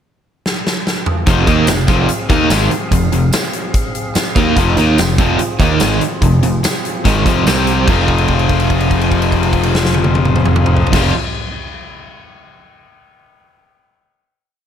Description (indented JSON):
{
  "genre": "classic rock",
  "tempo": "145 BPM",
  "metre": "4/4",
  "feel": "straight",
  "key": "F minor",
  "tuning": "A4 = 440 Hz",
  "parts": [
    { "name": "big rock drum kit", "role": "drums", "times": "0.5-11.0 s", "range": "crash cymbal, hi-hat, kick drum, snare drum, tambourine, toms", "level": "-17 LUFS", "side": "equal", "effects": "none" },
    { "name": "tonewheel organ", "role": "sustained chords", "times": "1.3-11.1 s", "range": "C4 to G5", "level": "-26 LUFS", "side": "right 1 dB", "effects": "slow rotary speaker" },
    { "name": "distorted electric guitar", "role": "riff", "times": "1.3-11.1 s", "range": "F2 to Eb4", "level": "-17 LUFS", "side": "left 8 dB", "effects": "distortion" },
    { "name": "overdriven semi-hollow guitar", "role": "riff", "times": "1.3-11.1 s", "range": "F2 to Eb4", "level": "-17 LUFS", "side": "right 8 dB", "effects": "tremolo" },
    { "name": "modern bright picked electric bass", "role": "bass", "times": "1.3-11.1 s", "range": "F1 to Eb2", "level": "-17 LUFS", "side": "equal", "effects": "none" }
  ],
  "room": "light reverb, small room ambience",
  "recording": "none",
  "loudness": "-12 LUFS",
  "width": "side -9 dB against mid",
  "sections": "0.0-1.3 pickup bar; 1.3-7.9 riff; 7.9-11.2 final chord",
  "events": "drum fill 0.4-1.3; held note 7.9-10.9",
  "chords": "0.0 N.C.; 1.3 Fm; 7.5 C5; 7.9 Fm",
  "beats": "0.04 0.45 0.85 | 1.26 1.68 2.09 2.50 | 2.91 3.32 3.74 4.15 | 4.56 4.98 5.39 5.81 | 6.22 6.64 7.05 7.46 | 7.88 8.29 8.71 9.12 | 9.53 9.94 10.36 10.77"
}